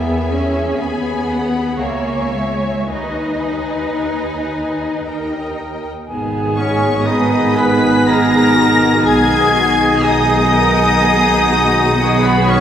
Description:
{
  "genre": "classical, slow romantic movement for symphony orchestra",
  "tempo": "53-62 BPM",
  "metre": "3/4",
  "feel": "rubato",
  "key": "G# minor",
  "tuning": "A4 = 442 Hz",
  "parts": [
    { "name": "warm symphonic violin section", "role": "melody", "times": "0.0-12.6 s", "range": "G5 to B6", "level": "-23 LUFS", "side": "left 4 dB", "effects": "none" },
    { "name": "warm symphonic violin section", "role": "second line", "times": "0.0-12.6 s", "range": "B4 to B5", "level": "-24 LUFS", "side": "left 2 dB", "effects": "none" },
    { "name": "rich symphonic viola section", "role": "accompaniment", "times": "0.0-12.6 s", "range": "B3 to C#5", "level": "-21 LUFS", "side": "right 1 dB", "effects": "none" },
    { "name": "rich studio double bass section", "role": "bass", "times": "0.0-12.6 s", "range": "G#1 to E2", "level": "-22 LUFS", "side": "right 2 dB", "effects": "none" },
    { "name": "rich symphonic cello section", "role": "bass", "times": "0.0-12.6 s", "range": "G#3 to B4", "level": "-22 LUFS", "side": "equal", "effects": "none" },
    { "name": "mellow clarinet", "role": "second line", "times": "6.1-12.6 s", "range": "B3", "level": "-22 LUFS", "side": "right 1 dB", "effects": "none" },
    { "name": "silver concert flute", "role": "second line", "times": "6.1-12.6 s", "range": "F#5 to G#5", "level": "-22 LUFS", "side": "equal", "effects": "none" },
    { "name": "warm French horn section", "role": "sustained chords", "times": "6.1-12.6 s", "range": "F#3 to D#4", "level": "-22 LUFS", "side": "left 2 dB", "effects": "none" },
    { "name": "warm trombone section", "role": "sustained chords", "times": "6.1-12.6 s", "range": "B2 to D#3", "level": "-22 LUFS", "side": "right 1 dB", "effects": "none" },
    { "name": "mellow oboe", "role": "second line", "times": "6.6-12.6 s", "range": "B3 to B4", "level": "-23 LUFS", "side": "equal", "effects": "none" },
    { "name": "warm trumpet", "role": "stabs", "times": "6.6-12.6 s", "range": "B3 to B4", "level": "-18 LUFS", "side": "left 1 dB", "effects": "none" }
  ],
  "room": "wet church reverb, RT60 3.5 s",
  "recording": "recorded in a church or concert hall",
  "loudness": "-13 LUFS",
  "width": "side -9 dB against mid",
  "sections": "0.0-6.1 A section; 6.1-12.6 B section",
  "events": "none",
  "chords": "0.0 E; 1.8 C#m; 2.9 G#m/D#; 5.1 D#; 6.1 G#m; 9.1 G#m/B; 12.0 B"
}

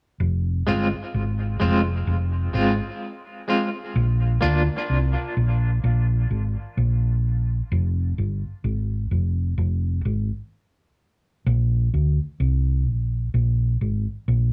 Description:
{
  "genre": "dub reggae",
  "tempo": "64 BPM",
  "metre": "4/4",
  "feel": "swing 59% on 16ths",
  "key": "F dorian",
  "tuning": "A4 = 440 Hz",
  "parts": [
    { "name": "hollow-body short-scale fingered electric bass", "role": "bass", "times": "0.2-14.5 s", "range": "F1 to D2", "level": "-23 LUFS", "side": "equal", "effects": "none" },
    { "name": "clean electric guitar", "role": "accompaniment", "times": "0.7-4.6 s", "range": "Ab3 to F4", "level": "-27 LUFS", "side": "equal", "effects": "tremolo, high-pass filter, dub echo" }
  ],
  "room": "little or no reverb",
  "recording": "echo-heavy mix, small room ambience",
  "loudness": "-23 LUFS",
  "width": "mono",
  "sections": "0.2-14.5 A section",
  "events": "none",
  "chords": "0.2 Fm; 4.0 N.C.; 7.7 Fm; 11.5 N.C."
}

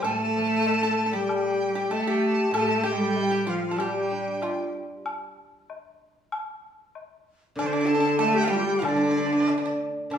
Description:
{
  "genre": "chinese traditional, Chinese chamber ensemble",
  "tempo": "96 BPM",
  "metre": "2/4",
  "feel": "rubato",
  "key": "D yu mode",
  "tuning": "A4 = 440 Hz",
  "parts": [
    { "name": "breathy dizi", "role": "melody", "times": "0.0-4.7, 7.6-10.2 s", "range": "C5 to A5", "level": "-30 LUFS", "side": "equal", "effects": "none" },
    { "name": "breathy low xiao", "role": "second line", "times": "0.0-4.7, 7.6-9.8 s", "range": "D4 to A4", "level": "-28 LUFS", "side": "left 4 dB", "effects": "none" },
    { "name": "pipa", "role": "second line", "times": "0.0-4.7, 7.6-10.2 s", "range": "D4 to A4", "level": "-30 LUFS", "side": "right 4 dB", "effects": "none" },
    { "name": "rich cello", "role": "second line", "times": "0.0-4.7, 7.6-10.2 s", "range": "D3 to A3", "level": "-27 LUFS", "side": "right 2 dB", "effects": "none" },
    { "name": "guzheng", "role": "accompaniment", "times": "0.0-10.2 s", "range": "A2 to G4", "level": "-31 LUFS", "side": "equal", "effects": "none" },
    { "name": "woodblock", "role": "percussion", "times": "0.0-10.2 s", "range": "none", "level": "-35 LUFS", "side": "left 3 dB", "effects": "none" }
  ],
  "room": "wet recital hall reverb, RT60 1.3 s",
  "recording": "studio reverb",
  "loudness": "-22 LUFS",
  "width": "side -8 dB against mid",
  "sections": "0.0-10.1 A section",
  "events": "none",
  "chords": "none"
}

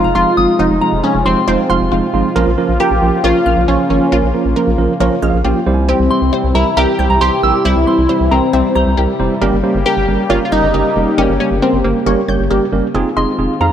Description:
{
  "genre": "pop",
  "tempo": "136 BPM",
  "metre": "4/4",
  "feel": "straight",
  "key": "F minor",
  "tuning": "A4 = 440 Hz",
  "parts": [
    { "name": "funky polysynth comp", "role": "melody", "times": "0.0-12.5 s", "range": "Bb3 to G4", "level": "-16 LUFS", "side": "left 1 dB", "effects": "chorus, analog delay" },
    { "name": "soft synth bell", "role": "second line", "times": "0.0-1.8, 6.1-8.8, 13.2-13.7 s", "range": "Bb5 to E6", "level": "-19 LUFS", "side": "equal", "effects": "chorus, phaser, analog delay" },
    { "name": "tine electric piano", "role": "accompaniment", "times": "0.0-13.7 s", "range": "F3 to Ab5", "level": "-17 LUFS", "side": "right 5 dB", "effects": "none" },
    { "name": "warm analog pad", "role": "sustained chords", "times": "0.0-13.7 s", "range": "C3 to G4", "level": "-21 LUFS", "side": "left 2 dB", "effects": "chorus" },
    { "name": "analog pluck", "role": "arpeggios", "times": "0.0-13.7 s", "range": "F4 to G6", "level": "-24 LUFS", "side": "left 2 dB", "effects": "chorus, phaser, analog delay" },
    { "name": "rubbery square bass", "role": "bass", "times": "0.0-13.7 s", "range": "F1 to F2", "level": "-18 LUFS", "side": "left 1 dB", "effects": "none" }
  ],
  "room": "light reverb",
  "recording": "none",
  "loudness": "-11 LUFS",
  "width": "side -9 dB against mid",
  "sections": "0.0-12.9 A section",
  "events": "tine electric piano fill 5.0-5.9",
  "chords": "0.0 Fm7; 2.4 Bbm; 5.7 C; 9.4 Gdim; 12.9 Fm7"
}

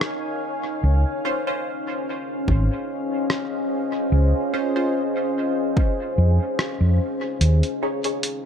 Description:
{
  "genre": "ambient dub",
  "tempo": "73 BPM",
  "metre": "4/4",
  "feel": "swing 54% on 16ths",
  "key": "unclear",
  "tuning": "A4 = 440 Hz",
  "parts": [
    { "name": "deep dark ambient pad", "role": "sustained chords", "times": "0.0-8.5 s", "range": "Db4 to Ab5", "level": "-24 LUFS", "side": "left 1 dB", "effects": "chorus, built-in reverb" },
    { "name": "lo-fi sampler-style drum kit", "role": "drums", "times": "0.0-8.4 s", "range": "hi-hat, rim click", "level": "-27 LUFS", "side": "equal", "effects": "studio reverb, dub echo" },
    { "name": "hollow-body short-scale fingered electric bass", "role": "bass", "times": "0.8-7.6 s", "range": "Ab1 to F2", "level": "-16 LUFS", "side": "equal", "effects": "none" },
    { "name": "filtered dub chord stab", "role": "stabs", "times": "1.2-8.3 s", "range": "Db4 to Db5", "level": "-29 LUFS", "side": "equal", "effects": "phaser, wide subtle chorus, dub echo" },
    { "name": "electronic kick drum", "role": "drums", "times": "2.5-5.9 s", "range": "none", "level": "-21 LUFS", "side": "equal", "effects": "overdrive, studio reverb" }
  ],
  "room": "moderate spring reverb, RT60 2.7 s",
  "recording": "none",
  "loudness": "-20 LUFS",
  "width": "side -8 dB against mid",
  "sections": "0.0-7.4 A section; 7.4-8.5 B section",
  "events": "none",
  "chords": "0.0 Eb7sus4; 0.8 Dbmaj7; 7.4 Eb7sus4"
}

